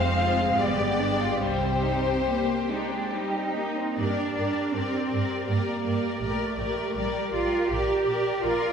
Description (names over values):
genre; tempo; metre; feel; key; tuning
classical, slow romantic movement for string orchestra; 68-83 BPM; 3/4; rubato; C minor, G minor from 4.0 s; A4 = 441 Hz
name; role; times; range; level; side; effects
rich studio violin section; melody; 0.0-8.7 s; C5 to F5; -30 LUFS; left 4 dB; none
rich studio violin section; second line; 0.0-8.7 s; G3 to C5; -30 LUFS; left 2 dB; none
rich studio viola section; accompaniment; 0.0-8.7 s; G3 to Bb4; -31 LUFS; right 2 dB; none
rich symphonic cello section; bass; 0.0-8.7 s; F2 to G4; -29 LUFS; right 2 dB; none
warm studio double bass section; bass; 0.0-8.5 s; F1 to G2; -32 LUFS; right 2 dB; none
room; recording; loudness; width
wet recital hall reverb, RT60 1.6 s; heard from further back in the room; -24 LUFS; side -7 dB against mid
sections
0.0-4.0 A section; 4.0-8.7 B section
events
none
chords
0.0 Fm; 0.6 G7; 1.4 Cm; 4.0 Gm; 6.2 Gm/Bb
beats
0.58 | 1.42 2.26 3.12 | 3.97 4.74 5.48 | 6.21 6.96 7.70 | 8.44